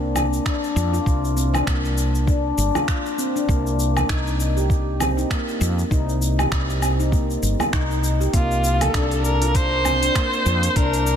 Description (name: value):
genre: organic downtempo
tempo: 99 BPM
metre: 4/4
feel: swing 57% on 16ths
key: unclear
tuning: A4 = 440 Hz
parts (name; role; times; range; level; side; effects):
- handpan; arpeggios; 0.0-10.9 s; Bb3 to G4; -24 LUFS; left 2 dB; digital delay
- woody fretless electric bass; bass; 0.0-11.2 s; G1 to F2; -22 LUFS; equal; sidechain pumping
- afro-pop drum kit; drums; 0.2-11.2 s; finger snaps, hi-hat, shaker, woodblock; -27 LUFS; left 1 dB; soft clipping on snare
- frame drum; percussion; 0.2-10.0 s; none; -31 LUFS; right 4 dB; none
- electronic kick drum; drums; 0.5-10.9 s; none; -22 LUFS; equal; none
- rich kamancheh; melody; 8.3-11.2 s; F4 to C5; -21 LUFS; equal; digital delay
room: light reverb, small room ambience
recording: dense, heavily limited modern master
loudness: -18 LUFS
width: side -8 dB against mid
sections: 0.0-11.2 A section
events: none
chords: 0.0 Bbadd9/C; 3.5 Cm7; 8.3 Bbadd9/C